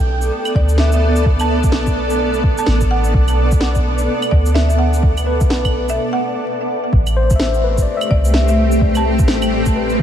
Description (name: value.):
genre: future garage.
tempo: 127 BPM.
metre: 4/4.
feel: swing 61% on 16ths.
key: A dorian.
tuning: A4 = 440 Hz.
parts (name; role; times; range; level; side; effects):
granular cloud pad; sustained chords; 0.0-10.0 s; A3 to D5; -19 LUFS; equal; built-in reverb, sidechain pumping.
soft 808-style bass; bass; 0.0-10.0 s; A1 to D2; -17 LUFS; equal; sidechain pumping.
electronic shaker, claves and snare drum; drums; 0.2-10.0 s; none; -24 LUFS; right 1 dB; studio reverb.
buzzing marimba with hard mallets; melody; 0.6-9.2 s; D5 to A5; -25 LUFS; equal; tape echo.
electronic kick drum; drums; 0.6-10.0 s; none; -15 LUFS; equal; studio reverb.
overdriven tine electric piano; accompaniment; 5.3-10.0 s; B4 to E5; -25 LUFS; left 5 dB; fast tremolo, sidechain pumping, ping-pong delay.
room: light reverb, digital ambience.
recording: vinyl crackle.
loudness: -13 LUFS.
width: side -10 dB against mid.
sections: 0.0-6.9 A section; 6.9-10.0 B section.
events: break 6.0-6.9.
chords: 0.0 Bm7; 6.9 Am7.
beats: 0.31 0.78 | 1.25 1.73 2.20 2.67 | 3.14 3.62 4.09 4.56 | 5.03 5.51 5.98 6.45 | 6.92 7.40 7.87 8.34 | 8.81 9.29 9.76.